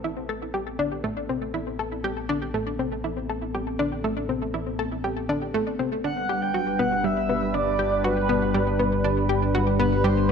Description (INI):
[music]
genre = ambient, sequencer-driven space music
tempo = 120 BPM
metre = 4/4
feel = straight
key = A dorian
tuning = A4 = 441 Hz
[part]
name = sweeping resonant pad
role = sustained chords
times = 0.0-10.3 s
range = G3 to B4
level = -28 LUFS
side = left 1 dB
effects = chorus
[part]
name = analog pluck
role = riff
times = 0.0-10.3 s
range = G3 to A4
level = -27 LUFS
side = left 1 dB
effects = chorus, tape echo
[part]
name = analog drone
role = bass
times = 0.0-10.3 s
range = G1 to A1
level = -31 LUFS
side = equal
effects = chorus
[part]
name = breathy flute-like synth lead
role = melody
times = 6.0-10.3 s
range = B4 to G5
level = -27 LUFS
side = right 2 dB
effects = lush chorus, tape echo
[sound]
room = moderate plate reverb, RT60 2.3 s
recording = none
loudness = -23 LUFS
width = side -6 dB against mid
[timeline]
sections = 0.0-10.3 A section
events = fade-in on analog synth pad 0.0-10.3; fade-in on synth drone 0.0-10.3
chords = 0.0 Amadd9; 6.0 G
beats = | 0.04 0.54 1.04 1.54 | 2.04 2.54 3.04 3.54 | 4.04 4.54 5.04 5.54 | 6.04 6.54 7.04 7.54 | 8.04 8.54 9.04 9.54 | 10.04